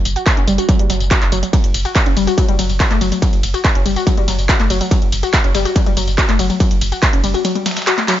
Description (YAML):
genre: driving peak-time techno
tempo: 142 BPM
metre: 4/4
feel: straight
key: F# phrygian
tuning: A4 = 440 Hz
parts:
  - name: saturated sub bass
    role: bass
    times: 0.0-7.3 s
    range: F#1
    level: -20 LUFS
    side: equal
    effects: overdrive, sidechain pumping, low-pass filter
  - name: dusty soul sampler-style drum kit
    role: drums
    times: 0.1-8.2 s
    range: hi-hat, snare drum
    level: -30 LUFS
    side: equal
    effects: none
  - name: techno drum kit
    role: drums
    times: 0.1-8.2 s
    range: handclaps, hi-hat, ride cymbal, tambourine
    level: -20 LUFS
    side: equal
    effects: overdrive
  - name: warbly dusty pluck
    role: riff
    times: 0.2-8.1 s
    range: F#3 to F#4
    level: -19 LUFS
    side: left 3 dB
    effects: chorus, sidechain pumping, digital delay
  - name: electronic kick drum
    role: drums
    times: 0.3-7.1 s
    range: none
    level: -15 LUFS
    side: equal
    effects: distortion, overdrive
room: light reverb, digital ambience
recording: nothing above 7.5 kHz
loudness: -13 LUFS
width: side -12 dB against mid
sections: 0.0-8.2 A section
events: none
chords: none